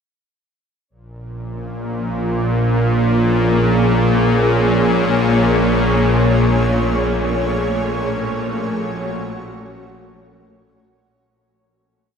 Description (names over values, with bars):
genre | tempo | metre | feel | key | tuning
dark ambient drone | free time | none | none | Bb minor | A4 = 440 Hz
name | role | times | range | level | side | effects
granular cloud pad | sustained chords | 1.9-11.3 s | A3 to Db5 | -21 LUFS | equal | built-in reverb
bowed-like drone | drone | 1.3-11.4 s | Bb1 to Bb2 | -16 LUFS | equal | built-in reverb
bubbling stepped-filter texture | texture | 1.6-11.3 s | Db4 to Db5 | -29 LUFS | equal | chorus, built-in reverb
room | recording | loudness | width
wet huge ambient reverb, RT60 6.9 s | none | -14 LUFS | side -6 dB against mid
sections
0.9-11.3 A section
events
fade-in on synth texture 0.9-11.3; fade-out 6.1-11.3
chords
0.9 Bbm7; 6.1 Gbm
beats
free time